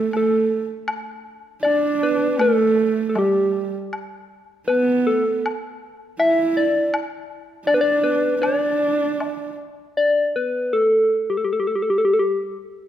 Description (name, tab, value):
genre	chinese traditional, Chinese chamber ensemble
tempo	80 BPM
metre	2/4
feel	rubato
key	D zhi mode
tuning	A4 = 440 Hz
part	soft struck synth lead	melody	0.0-12.6 s	G4 to E5	-19 LUFS	left 1 dB	chorus
part	dark horsehead fiddle	second line	0.0-9.5 s	G3 to E4	-23 LUFS	right 5 dB	none
part	woodblock	percussion	0.1-9.4 s	none	-31 LUFS	left 2 dB	none
room	light reverb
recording	none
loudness	-18 LUFS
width	side -11 dB against mid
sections	0.0-10.0 A section; 10.0-12.9 B section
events	none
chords	none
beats	0.14 | 0.89 1.64 | 2.39 3.16 | 3.93 4.69 | 5.44 6.19 | 6.93 7.67 | 8.42 9.19 | 9.97 10.74 | 11.48 12.21